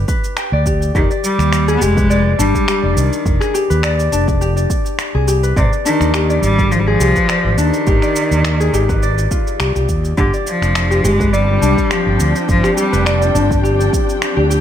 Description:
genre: organic downtempo.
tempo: 104 BPM.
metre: 4/4.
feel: swing 54% on 16ths.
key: G phrygian dominant.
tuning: A4 = 440 Hz.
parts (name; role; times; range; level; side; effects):
Celtic harp; arpeggios; 0.0-14.6 s; D4 to G5; -18 LUFS; left 3 dB; digital delay.
fretless electric bass; bass; 0.0-14.6 s; F1 to Eb2; -16 LUFS; right 1 dB; none.
electronic kick drum; drums; 0.1-14.1 s; none; -18 LUFS; right 1 dB; studio reverb.
electronic shaker and finger snaps; drums; 0.1-14.6 s; none; -24 LUFS; right 1 dB; studio reverb.
bright cello; melody; 1.0-13.3 s; C3 to B3; -18 LUFS; equal; digital delay.
muted symphonic string section; sustained chords; 10.2-14.6 s; F3 to G5; -23 LUFS; equal; sidechain pumping.
room: small room ambience.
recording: none.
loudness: -12 LUFS.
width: side -10 dB against mid.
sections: 0.0-14.6 A section.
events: none.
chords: 0.0 G5; 0.9 Fm9; 5.6 Abmaj7(no3); 10.2 G7sus4.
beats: 0.37 | 0.95 1.52 2.10 2.68 | 3.25 3.83 4.41 4.99 | 5.56 6.14 6.72 7.29 | 7.87 8.45 9.02 9.60 | 10.18 10.75 11.33 11.91 | 12.48 13.06 13.64 14.22.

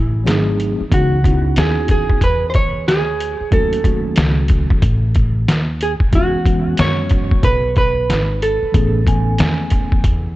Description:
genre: hip hop, jazz-hop.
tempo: 92 BPM.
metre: 4/4.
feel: swing 63% on 16ths.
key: C# minor.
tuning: A4 = 439 Hz.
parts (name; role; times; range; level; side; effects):
hollow-body jazz guitar; melody; 0.0-9.4 s; E4 to C#5; -20 LUFS; right 2 dB; analog delay.
upright bass; bass; 0.0-10.4 s; G#1 to F#2; -20 LUFS; equal; none.
mellow tine electric piano; accompaniment; 0.2-10.0 s; D#3 to G#5; -22 LUFS; equal; medium stereo tremolo.
trip hop sampler-style drum kit; drums; 0.3-10.2 s; hi-hat, kick drum, snare drum; -16 LUFS; equal; none.
room: digital ambience.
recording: worn, warbling old tape, cassette tape, warbly pitch drift.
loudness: -13 LUFS.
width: side -17 dB against mid.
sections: 0.0-10.4 A section.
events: none.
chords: 0.3 G#7b9; 0.9 C#m11; 3.5 D#m7b5; 6.1 E69; 8.7 Amaj9.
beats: 0.26 | 0.92 1.57 2.22 2.87 | 3.52 4.17 4.83 5.48 | 6.13 6.78 7.44 8.09 | 8.74 9.39 10.04.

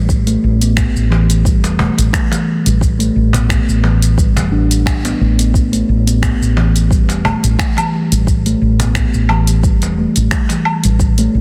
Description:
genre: organic downtempo.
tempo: 88 BPM.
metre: 4/4.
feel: swing 54% on 16ths.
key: unclear.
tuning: A4 = 440 Hz.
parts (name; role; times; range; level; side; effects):
steel tongue drum; arpeggios; 0.0-11.3 s; E3 to D4; -19 LUFS; equal; low-pass filter, tape echo.
woody fretless electric bass; bass; 0.0-11.4 s; E1 to A1; -16 LUFS; equal; sidechain pumping.
deep house drum kit; drums; 0.1-11.3 s; finger snaps, hi-hat, shaker, woodblock; -24 LUFS; equal; soft clipping on snare.
electronic kick drum; drums; 0.1-11.1 s; none; -18 LUFS; equal; none.
cajon; percussion; 1.1-10.6 s; none; -25 LUFS; equal; none.
room: light reverb, digital ambience.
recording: dense, heavily limited modern master.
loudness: -14 LUFS.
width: mono.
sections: 0.0-11.4 A section.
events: none.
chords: 0.1 E5; 5.5 Em.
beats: | 0.09 0.77 1.45 2.14 | 2.82 3.50 4.18 4.86 | 5.54 6.23 6.91 7.59 | 8.27 8.95 9.64 10.32 | 11.00.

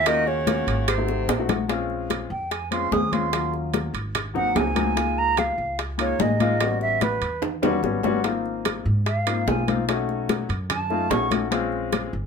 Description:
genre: Afro-Cuban jazz.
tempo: 147 BPM.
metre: 4/4.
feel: straight.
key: Bb minor.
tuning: A4 = 436 Hz.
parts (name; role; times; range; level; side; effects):
concert flute; melody; 0.0-11.3 s; B4 to Eb6; -25 LUFS; right 4 dB; none.
breathy baritone saxophone; second line; 0.0-1.5 s; C3 to Eb3; -31 LUFS; left 6 dB; none.
upright bass; bass; 0.0-12.3 s; G1 to Ab2; -29 LUFS; equal; none.
dark concert grand piano; accompaniment; 0.1-12.1 s; Gb3 to Ab4; -26 LUFS; left 6 dB; none.
bongos; percussion; 0.1-12.1 s; none; -30 LUFS; left 7 dB; none.
congas; percussion; 0.1-12.3 s; none; -30 LUFS; left 5 dB; none.
timbales; percussion; 0.1-12.1 s; none; -28 LUFS; right 8 dB; none.
room: moderate club reverb, RT60 0.7 s.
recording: minimal, uncompressed stereo recording.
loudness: -21 LUFS.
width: side -6 dB against mid.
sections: 0.0-1.7 A section; 1.7-12.3 B section.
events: drum fill 0.9-1.7, 7.4-8.2; flute solo 1.7-12.3.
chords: 0.1 Ebm9; 0.9 Ab7b9; 1.7 Bbm7; 3.3 Ebm7; 4.2 Ab7; 5.0 Db69; 6.6 A13; 8.2 Ab6; 9.9 B9; 11.5 Bbm7.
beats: | 0.06 0.47 0.88 1.29 | 1.70 2.10 2.52 2.92 | 3.33 3.74 4.15 4.56 | 4.97 5.38 5.79 6.20 | 6.61 7.02 7.43 7.84 | 8.25 8.66 9.06 9.47 | 9.88 10.29 10.70 11.11 | 11.52 11.93.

